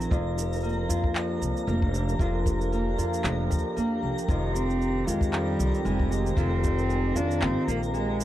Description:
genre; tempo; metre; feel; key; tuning
folktronica; 115 BPM; 4/4; swing 56% on 16ths; unclear; A4 = 436 Hz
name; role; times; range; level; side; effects
warm analog pad; sustained chords; 0.0-8.2 s; Eb3 to Bb4; -33 LUFS; right 2 dB; chorus
nylon-string guitar; arpeggios; 0.0-8.2 s; F2 to G4; -31 LUFS; left 1 dB; low-pass filter, tape echo
upright bass; bass; 0.0-8.2 s; F1 to F2; -29 LUFS; equal; none
electronic shaker and handclaps; drums; 0.0-8.2 s; none; -35 LUFS; right 1 dB; none
twinkling granular texture; texture; 0.0-8.2 s; Bb4 to Bb5; -37 LUFS; equal; built-in reverb
kick drum; drums; 0.1-6.8 s; none; -27 LUFS; equal; none
warm cello; melody; 4.3-8.2 s; Eb3 to D4; -29 LUFS; right 1 dB; none
room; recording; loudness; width
small room reverb; dry, close 1970s-style studio recording; -24 LUFS; side -13 dB against mid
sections
0.0-8.2 A section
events
none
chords
0.1 Ebmaj7/F; 4.3 Abmaj7/F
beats
| 0.11 0.63 1.16 1.68 | 2.20 2.72 3.24 3.76 | 4.29 4.81 5.33 5.85 | 6.37 6.89 7.42 7.94

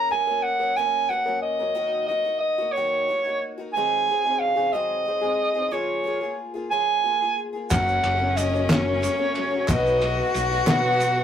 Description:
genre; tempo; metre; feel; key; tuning
indie folk with a building arrangement; 61 BPM (dotted quarters); 6/8; straight; F# major; A4 = 441 Hz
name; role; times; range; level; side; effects
mellow soprano saxophone; melody; 0.0-11.2 s; C#5 to G#5; -22 LUFS; right 2 dB; none
picked twelve-string acoustic guitar; accompaniment; 0.0-11.2 s; F#2 to A#4; -30 LUFS; left 3 dB; none
rich cello; second line; 7.7-11.2 s; C#4 to F#4; -26 LUFS; left 4 dB; none
clear concert grand piano; accompaniment; 7.7-11.2 s; F#1 to D#5; -35 LUFS; left 2 dB; none
dark upright piano; arpeggios; 7.7-11.2 s; F#3 to F#4; -34 LUFS; right 2 dB; digital delay
picked electric bass; bass; 7.7-11.2 s; F#1 to B2; -28 LUFS; equal; none
cloth-damped thuddy drum kit; drums; 7.7-11.2 s; kick drum, ride cymbal, snare drum; -26 LUFS; equal; none
group handclap; percussion; 7.7-11.1 s; none; -35 LUFS; right 1 dB; none
tube shaker; percussion; 7.7-11.2 s; none; -39 LUFS; right 6 dB; none
room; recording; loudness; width
moderate small room reverb, RT60 0.6 s; rough rehearsal-room recording, tube saturation; -21 LUFS; side -9 dB against mid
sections
0.0-11.2 A section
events
none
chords
0.0 F#; 1.8 D#m; 3.8 G#7; 5.7 C#6; 7.7 F#; 9.7 B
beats
0.78 | 1.77 2.76 | 3.75 4.74 | 5.73 6.72 | 7.71 8.70 | 9.68 10.67

